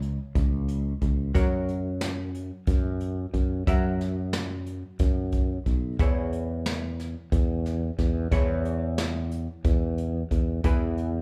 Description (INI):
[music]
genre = progressive instrumental, band music in an uneven meter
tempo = 181 BPM (eighths)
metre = 7/8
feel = straight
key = F# mixolydian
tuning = A4 = 440 Hz
[part]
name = archtop guitar, miked and amplified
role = accompaniment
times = 0.0-11.2 s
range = C#3 to E5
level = -36 LUFS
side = equal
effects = none
[part]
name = sustaining fretless electric bass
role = bass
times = 0.0-11.2 s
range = B1 to F#2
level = -30 LUFS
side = equal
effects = none
[part]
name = jazz brush drum kit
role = drums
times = 0.0-11.1 s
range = hi-hat, kick drum, snare drum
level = -28 LUFS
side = equal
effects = none
[sound]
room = light reverb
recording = band playing live in one room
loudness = -27 LUFS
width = mono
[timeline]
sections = 0.0-11.2 A section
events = none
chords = 0.0 C#m7; 1.3 F#; 6.0 E6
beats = 0.02 0.35 0.69 1.02 | 1.35 1.68 2.01 2.34 2.68 3.01 3.34 | 3.67 4.00 4.33 4.67 5.00 5.33 5.66 | 5.99 6.33 6.66 6.99 7.32 7.65 7.98 | 8.32 8.65 8.98 9.31 9.64 9.97 10.31 | 10.64 10.97